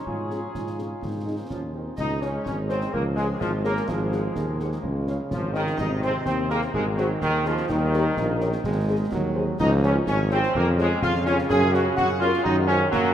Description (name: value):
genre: military-style march for wind band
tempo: 126 BPM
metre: 2/4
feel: straight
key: Db major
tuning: A4 = 440 Hz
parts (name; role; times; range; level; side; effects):
- glockenspiel with rubber mallets; second line; 0.0-1.5 s; Ab5; -43 LUFS; left 1 dB; none
- mellow euphonium; second line; 0.0-13.1 s; C3 to F4; -30 LUFS; right 2 dB; none
- mellow woodwind section; second line; 0.0-13.1 s; Eb4 to Ab5; -35 LUFS; left 1 dB; none
- warm trombone section; sustained chords; 0.0-13.1 s; Eb3 to Ab4; -26 LUFS; equal; none
- dark trumpet section; melody; 0.1-12.8 s; Ab4 to Gb5; -48 LUFS; left 1 dB; none
- mellow tuba; bass; 0.1-13.1 s; Ab1 to Ab2; -26 LUFS; equal; none
- concert bass drum, concert snare drum and clash cymbals; drums; 0.1-13.1 s; none; -35 LUFS; equal; none
- mellow French horn section; accompaniment; 0.3-12.8 s; C4 to Db5; -33 LUFS; left 2 dB; none
room: wet cathedral reverb, RT60 5.4 s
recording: in a vast, echoing space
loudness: -21 LUFS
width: side -10 dB against mid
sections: 0.0-2.0 A section; 2.0-13.1 B section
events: none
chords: 0.1 Db/Ab; 1.0 Ab; 2.0 Db; 3.9 Ab; 4.8 Db; 5.8 Ab; 7.7 Eb7; 8.6 Ab; 9.6 Db; 10.5 Db/F; 11.5 Ebm7/Gb (rootless); 12.4 Ab7/Gb